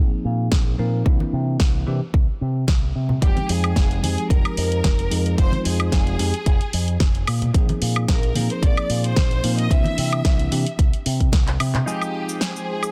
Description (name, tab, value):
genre	nu-disco, nu disco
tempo	111 BPM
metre	4/4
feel	swing 54% on 16ths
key	F dorian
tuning	A4 = 441 Hz
part	bell-like tine electric piano	accompaniment	0.0-12.9 s	E3 to G5	-30 LUFS	equal	phaser
part	fingered electric bass with an envelope filter	bass	0.0-11.8 s	F1 to C3	-25 LUFS	equal	none
part	electronic kick drum	drums	0.5-11.4 s	none	-21 LUFS	equal	none
part	house drum kit	drums	0.5-12.9 s	handclaps, hi-hat, shaker, snare drum, woodblock	-29 LUFS	equal	none
part	congas	percussion	0.5-11.8 s	none	-30 LUFS	equal	none
part	rich studio violin section	melody	3.2-12.9 s	G4 to E5	-31 LUFS	equal	delay
part	lush unison pad	sustained chords	12.4-12.9 s	Ab3 to C5	-36 LUFS	equal	chorus, sidechain pumping
part	clean electric guitar	riff	11.9-12.4 s	Eb4 to Ab4	-33 LUFS	equal	lush chorus, low-pass filter
room	digital ambience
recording	dense, heavily limited modern master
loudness	-20 LUFS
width	mono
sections	0.0-11.9 A section; 11.9-12.9 B section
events	drum fill 11.5-11.9; filter sweep on analog synth pad 11.9-12.9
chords	0.0 Bb9sus4; 1.1 C7; 3.2 Fm7; 7.3 Bb9sus4; 9.7 C7; 11.9 Fm7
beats	0.52 | 1.06 1.60 2.14 2.68 | 3.22 3.76 4.30 4.84 | 5.38 5.92 6.46 7.00 | 7.54 8.09 8.63 9.17 | 9.71 10.25 10.79 11.33 | 11.87 12.41